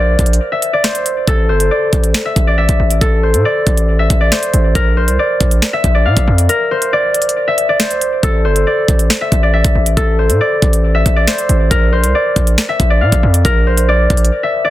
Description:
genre	hip hop, drill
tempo	138 BPM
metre	4/4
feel	half-time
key	A phrygian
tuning	A4 = 441 Hz
part	concert harp	melody	0.0-14.7 s	A4 to F5	-14 LUFS	left 1 dB	low-pass filter, plate reverb, tape echo
part	distorted 808-style bass	bass	0.0-14.3 s	G1 to Bb2	-13 LUFS	equal	distortion
part	drill drum kit	drums	0.2-14.3 s	finger snaps, hi-hat, kick drum, snare drum	-15 LUFS	equal	none
room	light reverb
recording	dense, heavily limited modern master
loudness	-11 LUFS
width	side -14 dB against mid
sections	0.0-14.7 A section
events	break 0.4-1.3, 14.3-14.7; kick muted 6.5-8.2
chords	0.0 Bb; 1.3 A5; 4.8 Bb; 8.2 A5; 11.7 Bb

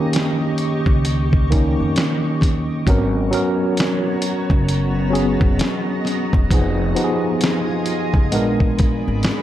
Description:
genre	lo-fi hip hop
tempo	66 BPM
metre	4/4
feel	swing 62% on 16ths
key	Eb minor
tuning	A4 = 440 Hz
part	tine electric piano	accompaniment	0.0-9.4 s	Eb3 to Bb4	-20 LUFS	equal	overdrive, fast stereo tremolo, low-pass filter
part	granular cloud pad	sustained chords	0.0-9.4 s	Cb4 to Db6	-27 LUFS	left 1 dB	built-in reverb, low-pass filter
part	dusty soul sampler-style drum kit	drums	0.1-9.4 s	hi-hat, kick drum, snare drum	-19 LUFS	equal	none
part	upright bass	bass	0.9-9.2 s	Fb1 to F2	-22 LUFS	equal	none
room	light reverb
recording	none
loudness	-16 LUFS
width	side -12 dB against mid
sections	0.0-9.4 A section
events	none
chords	0.0 Eb7; 2.9 Abm11; 6.5 Fm7b5; 8.3 Bb7b9

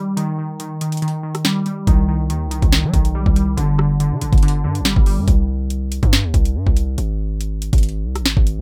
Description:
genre	hip hop, drill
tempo	141 BPM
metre	4/4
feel	half-time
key	C harmonic minor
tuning	A4 = 440 Hz
part	glassy wavetable pluck	accompaniment	0.0-5.3 s	D3 to G3	-23 LUFS	equal	chorus, low-pass filter
part	drill drum kit	drums	0.2-8.6 s	hi-hat, kick drum, rim click, snare drum	-19 LUFS	equal	none
part	distorted 808-style bass	bass	1.9-8.6 s	G1 to G3	-22 LUFS	equal	distortion
room	little or no reverb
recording	rough home demo mix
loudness	-18 LUFS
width	mono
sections	0.0-8.6 A section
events	break 0.0-1.9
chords	0.0 Eb; 1.9 Cm; 3.6 G5; 5.3 C5; 7.0 N.C.

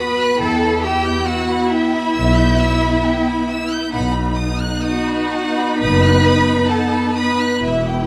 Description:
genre	classical, slow romantic movement for string orchestra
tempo	58-70 BPM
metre	4/4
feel	rubato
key	unclear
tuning	A4 = 436 Hz
part	rich chamber violin section	melody	0.0-7.6 s	E5 to B5	-27 LUFS	equal	none
part	rich chamber violin section	second line	0.0-8.1 s	E5 to G6	-27 LUFS	equal	none
part	rich studio viola section	accompaniment	0.0-8.1 s	B3 to F#4	-22 LUFS	equal	none
part	rich chamber cello section	bass	0.0-7.6 s	E4 to B4	-22 LUFS	equal	none
part	clear studio double bass section	bass	0.4-8.1 s	E1 to E2	-23 LUFS	equal	none
room	light reverb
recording	none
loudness	-17 LUFS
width	mono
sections	0.0-8.1 A section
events	none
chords	0.4 Em; 3.9 B

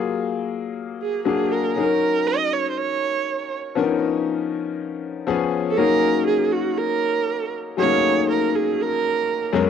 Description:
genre	pop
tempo	120 BPM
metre	4/4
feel	straight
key	F# major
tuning	A4 = 439 Hz
part	bright grand piano	accompaniment	0.0-9.7 s	F#2 to A#4	-22 LUFS	left 7 dB	wide subtle chorus
part	warm viola	melody	1.0-9.6 s	F#4 to D#5	-22 LUFS	right 8 dB	cassette tape
room	wet booth ambience, RT60 0.2 s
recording	home recording on cassette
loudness	-19 LUFS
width	side -8 dB against mid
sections	0.0-5.8 A section; 5.8-9.7 B section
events	none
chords	0.0 F#maj9; 1.3 A#7b13; 1.8 D#m7; 3.8 Bmaj9#11; 5.3 C#7; 5.8 F#69

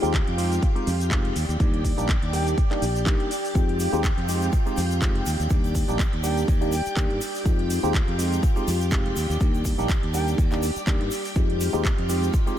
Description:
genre	filtered disco house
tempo	123 BPM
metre	4/4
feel	swing 55% on 16ths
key	F dorian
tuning	A4 = 441 Hz
part	tine electric piano	accompaniment	0.0-12.6 s	G3 to G4	-28 LUFS	equal	phaser, sidechain pumping
part	string machine, full ensemble	sustained chords	0.0-12.6 s	F4 to G5	-31 LUFS	equal	ensemble chorus, sidechain pumping
part	modern bright fingered electric bass	bass	0.0-12.3 s	F1 to G2	-26 LUFS	equal	tube saturation, sidechain pumping
part	house drum kit	drums	0.0-12.6 s	cabasa, handclaps, hi-hat	-33 LUFS	equal	sidechain pumping on hats, sidechain pumping on perc
part	electronic kick drum	drums	0.1-12.4 s	none	-23 LUFS	equal	none
part	silver concert flute	melody	2.3-2.5, 6.2-7.1, 10.1-10.3 s	G5	-37 LUFS	left 1 dB	sidechain pumping, diffuse ambient delay
part	egg shaker	percussion	3.6-12.6 s	none	-42 LUFS	left 2 dB	none
room	light reverb, digital ambience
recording	none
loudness	-21 LUFS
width	side -11 dB against mid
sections	0.0-12.6 A section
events	none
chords	0.0 Fm9; 1.4 Ebmaj7; 3.6 Fm9; 5.3 Ebmaj7; 7.5 Fm9; 9.2 Ebmaj7; 11.4 Fm9

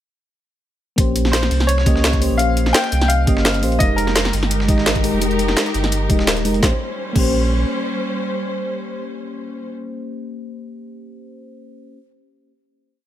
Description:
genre	liquid drum and bass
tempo	170 BPM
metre	4/4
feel	straight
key	Bb dorian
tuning	A4 = 439 Hz
part	mellow FM electric piano	accompaniment	1.0-12.0 s	Ab3 to Eb5	-23 LUFS	left 1 dB	chorus, tape echo
part	warm sub bass	bass	1.0-7.6 s	Eb1 to Db2	-20 LUFS	equal	none
part	drum and bass drum kit	drums	1.0-7.3 s	crash cymbal, hi-hat, snare drum	-21 LUFS	equal	overdrive, studio ambience
part	dusty soul sampler-style drum kit	drums	1.0-6.6 s	hi-hat, snare drum	-27 LUFS	equal	high-pass filter on hats, studio ambience, high-pass filter on snare
part	electronic kick drum	drums	1.0-7.3 s	none	-18 LUFS	equal	overdrive, studio ambience
part	bright grand piano	melody	1.3-4.3 s	Bb4 to G5	-22 LUFS	left 2 dB	tape echo
part	rich studio string section	sustained chords	3.8-9.7 s	G3 to C5	-26 LUFS	equal	none
room	light reverb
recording	none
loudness	-15 LUFS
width	side -12 dB against mid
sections	1.0-6.6 drop; 6.6-9.4 final chord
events	drop 1.0-6.6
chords	1.0 Bbm69; 3.8 Fm11; 6.6 Bbm69

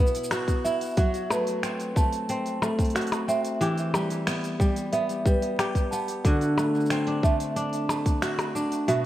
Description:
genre	folktronica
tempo	91 BPM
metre	4/4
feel	straight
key	unclear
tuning	A4 = 441 Hz
part	marimba with soft mallets	second line	0.0-9.1 s	B4 to A5	-30 LUFS	right 2 dB	diffuse ambient delay
part	kora	arpeggios	0.0-9.1 s	B2 to G4	-26 LUFS	equal	diffuse ambient delay
part	minimal click drum kit	drums	0.1-9.0 s	finger snaps, hi-hat, percussion blips, shaker	-32 LUFS	left 1 dB	none
part	electronic kick drum	drums	0.5-8.2 s	none	-23 LUFS	equal	none
room	wet plate reverb, RT60 2.0 s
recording	dreamy mix soaked in reverb, vinyl crackle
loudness	-23 LUFS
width	side -13 dB against mid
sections	0.0-9.1 A section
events	none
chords	0.0 Bsus4; 1.0 F#dim; 3.6 Em; 6.2 D

